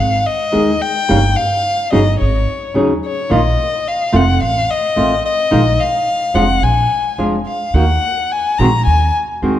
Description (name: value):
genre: tango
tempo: 108 BPM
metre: 4/4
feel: rubato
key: Eb minor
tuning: A4 = 441 Hz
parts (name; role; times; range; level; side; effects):
- warm violin; second line; 0.0-9.1 s; Db5 to Bb5; -17 LUFS; left 3 dB; none
- upright bass; bass; 0.0-9.6 s; F1 to Eb2; -16 LUFS; right 1 dB; none
- flamenco guitar; accompaniment; 0.5-9.6 s; Db3 to Ab4; -18 LUFS; equal; none
room: moderate concert hall reverb, RT60 2.0 s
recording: none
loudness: -13 LUFS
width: side -12 dB against mid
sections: 0.0-9.6 A section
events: violin solo 0.0-9.6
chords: 0.0 Abm; 1.1 Eb7/G; 2.2 Ab7sus4; 3.3 Bbsus4; 4.4 F7/A; 5.5 Bb7sus4; 6.6 Bb7; 7.7 Ebm; 8.9 Ab7/Eb